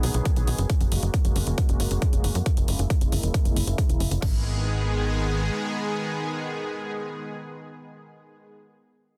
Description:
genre	uplifting trance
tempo	136 BPM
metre	4/4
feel	straight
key	G# minor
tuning	A4 = 441 Hz
part	supersaw pad	sustained chords	0.0-8.5 s	C#3 to G#4	-33 LUFS	equal	sidechain pumping, low-pass filter
part	tight sequencer bass	bass	0.0-5.5 s	E1 to F#2	-28 LUFS	equal	sidechain pumping
part	big-room dance drum kit	drums	0.0-4.3 s	crash cymbal, hi-hat	-37 LUFS	equal	none
part	electronic kick drum	drums	0.3-4.3 s	none	-26 LUFS	equal	none
room	little or no reverb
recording	dense, heavily limited modern master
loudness	-25 LUFS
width	mono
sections	0.0-4.2 A section; 4.2-7.8 B section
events	filter sweep on analog synth bass 0.0-4.2; filter sweep on supersaw synth 0.0-4.2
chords	0.0 B; 0.7 F#add9; 4.2 G#m

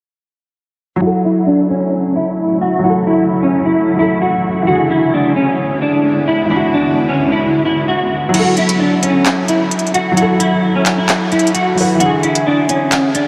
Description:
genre	hip hop, trap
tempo	131 BPM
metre	4/4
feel	half-time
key	F# minor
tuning	A4 = 437 Hz
part	semi-hollow electric guitar	melody	1.0-13.3 s	C#4 to F#4	-17 LUFS	equal	ensemble chorus, low-pass filter, diffuse ambient delay
part	felt-muted upright piano	accompaniment	1.0-13.3 s	D3 to B4	-19 LUFS	equal	low-pass filter
part	granular cloud pad	sustained chords	1.8-8.3 s	C#3 to E4	-24 LUFS	equal	built-in reverb, low-pass filter
part	trap drum kit	drums	8.3-13.3 s	crash cymbal, handclaps, hi-hat	-22 LUFS	equal	none
room	wet huge ambient reverb, RT60 7.7 s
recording	dreamy mix soaked in reverb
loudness	-14 LUFS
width	mono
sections	1.0-8.3 A section; 8.3-13.3 B section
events	filter sweep 1.0-8.3; kick muted 8.3-13.3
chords	1.0 F#m7; 4.7 E7; 8.3 F#m7; 12.0 E7

